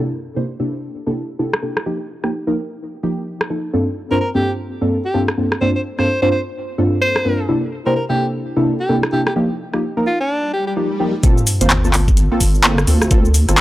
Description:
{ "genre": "UK garage, two-step garage", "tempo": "128 BPM", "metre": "4/4", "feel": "swing 61% on 16ths", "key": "G minor", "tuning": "A4 = 440 Hz", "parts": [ { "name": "deep mellow chord stab", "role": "stabs", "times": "0.0-13.6 s", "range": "G2 to C5", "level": "-19 LUFS", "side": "equal", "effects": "analog chorus, analog delay" }, { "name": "garage drum kit", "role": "drums", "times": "1.5-13.6 s", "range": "handclaps, hi-hat, rim click, shaker", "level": "-17 LUFS", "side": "equal", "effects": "low-pass filter on snare, low-pass filter on hats, low-pass filter on perc, low-pass filter on room" }, { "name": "clear alto saxophone", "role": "melody", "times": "4.1-10.7 s", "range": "D4 to C5", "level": "-20 LUFS", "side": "equal", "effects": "analog delay" }, { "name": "swell and sub drop", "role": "sound effects", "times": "10.5-13.1 s", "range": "none", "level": "-23 LUFS", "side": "equal", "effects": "none" }, { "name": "electronic kick drum", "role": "drums", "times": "11.2-13.2 s", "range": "none", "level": "-14 LUFS", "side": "equal", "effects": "none" }, { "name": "deep soft wobble bass", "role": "bass", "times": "11.6-13.6 s", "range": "G1 to D2", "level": "-15 LUFS", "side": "equal", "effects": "chorus" } ], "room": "little or no reverb", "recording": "dry, gritty hardware recording, transformer saturation", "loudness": "-15 LUFS", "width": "side -16 dB against mid", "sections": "0.0-11.2 A section; 11.2-13.6 B section", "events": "filter sweep on drum 0.0-11.2; filter sweep on synth stab 0.0-11.2; swell 10.5-11.2; drop 11.2-13.6; impact 11.2-13.1", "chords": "0.0 C13; 1.9 F7sus4; 3.7 Gm11; 7.5 C13; 9.4 F7sus4; 11.2 Gm11" }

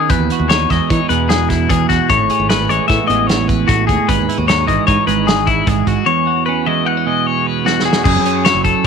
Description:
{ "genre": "math rock and midwest emo", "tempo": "151 BPM", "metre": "5/4", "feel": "straight", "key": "E major", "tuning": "A4 = 437 Hz", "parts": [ { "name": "twelve-string electric guitar", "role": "accompaniment", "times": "0.0-8.9 s", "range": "E2 to G#4", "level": "-18 LUFS", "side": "right 13 dB", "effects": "none" }, { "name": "clean electric guitar", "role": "arpeggios", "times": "0.0-8.9 s", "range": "E4 to F#5", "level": "-16 LUFS", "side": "left 10 dB", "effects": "spring reverb" }, { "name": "modern bright fingered electric bass", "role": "bass", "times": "0.1-8.7 s", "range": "F#1 to E3", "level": "-19 LUFS", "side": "equal", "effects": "none" }, { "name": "loose indie drum kit", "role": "drums", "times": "0.1-8.9 s", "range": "crash cymbal, hi-hat, kick drum, snare drum", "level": "-18 LUFS", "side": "equal", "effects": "none" } ], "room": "small room ambience", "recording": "1960s-style stereo with parts hard left and right", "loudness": "-12 LUFS", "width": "side -6 dB against mid", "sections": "0.0-8.1 A section", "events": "drum fill 7.7-8.1", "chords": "0.1 Emaj9; 2.1 Amaj9; 4.1 Emaj9/G#; 6.1 E69; 8.1 F#m9" }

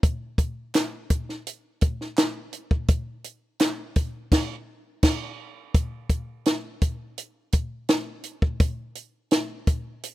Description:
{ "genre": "soul", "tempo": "84 BPM", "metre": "4/4", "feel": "straight", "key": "none", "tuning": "none", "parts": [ { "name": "compact cocktail drum kit", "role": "drums", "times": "0.0-10.1 s", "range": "crash cymbal, hi-hat, kick drum, snare drum", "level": "-22 LUFS", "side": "equal", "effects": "none" }, { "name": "group handclap", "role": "percussion", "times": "0.8-3.8 s", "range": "none", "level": "-35 LUFS", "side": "right 1 dB", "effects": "none" } ], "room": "small room reverb", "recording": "rough home demo mix", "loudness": "-23 LUFS", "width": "side -16 dB against mid", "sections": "0.0-5.7 A section; 5.7-10.1 B section", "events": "band accent 4.3-5.7", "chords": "none" }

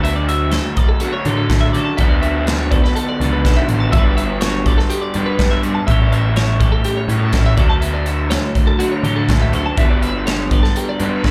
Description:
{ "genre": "math rock and midwest emo", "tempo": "123 BPM", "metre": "4/4", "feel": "straight", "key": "G lydian", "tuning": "A4 = 441 Hz", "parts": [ { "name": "twelve-string electric guitar", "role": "accompaniment", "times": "0.0-11.3 s", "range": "G2 to B4", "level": "-26 LUFS", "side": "equal", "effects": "none" }, { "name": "twelve-string electric guitar", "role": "arpeggios", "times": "0.0-11.3 s", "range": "F#4 to A5", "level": "-26 LUFS", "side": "equal", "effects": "subtle chorus, slapback echo" }, { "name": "raw garage guitar", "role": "riff", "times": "0.0-11.3 s", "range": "G2 to E4", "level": "-25 LUFS", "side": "equal", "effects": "overdrive, slapback echo" }, { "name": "fuzz picked electric bass", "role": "bass", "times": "0.0-11.3 s", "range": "G1 to D3", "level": "-21 LUFS", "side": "equal", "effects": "overdrive" }, { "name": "modern studio drum kit", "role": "drums", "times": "0.0-11.3 s", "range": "hi-hat, kick drum, snare drum", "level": "-19 LUFS", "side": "equal", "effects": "none" } ], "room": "little or no reverb", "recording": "live gig heard through the venue's PA, club reverb", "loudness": "-16 LUFS", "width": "mono", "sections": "0.0-11.3 A section", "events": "none", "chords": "0.0 Dmaj7; 2.0 Bm7/D; 3.9 Gmaj7; 5.9 A7; 7.6 Dmaj7; 9.8 Gmaj7" }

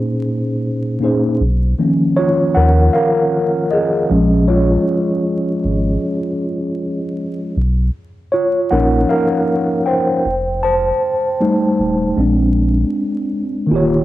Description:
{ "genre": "hip hop", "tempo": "78 BPM", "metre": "4/4", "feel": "swing 57% on 16ths", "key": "unclear", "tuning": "A4 = 440 Hz", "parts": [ { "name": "mellow tine electric piano", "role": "accompaniment", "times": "0.0-14.0 s", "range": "Bb2 to A5", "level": "-15 LUFS", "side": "equal", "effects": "medium stereo tremolo, low-pass filter, cassette tape, plate reverb" }, { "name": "warm sub bass", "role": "bass", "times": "1.4-14.0 s", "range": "Eb1 to D#2", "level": "-16 LUFS", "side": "equal", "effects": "tube saturation" } ], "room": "wet booth ambience, RT60 0.2 s", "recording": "home recording on cassette, vinyl crackle", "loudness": "-14 LUFS", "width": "side -15 dB against mid", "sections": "0.0-1.4 A section; 1.4-13.7 B section", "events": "tine electric piano solo 1.4-13.7", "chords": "0.0 Bbm11; 1.4 Bmaj9#11; 4.1 Bbm7; 7.6 Bmaj9#11; 10.3 F9; 12.2 Bb7" }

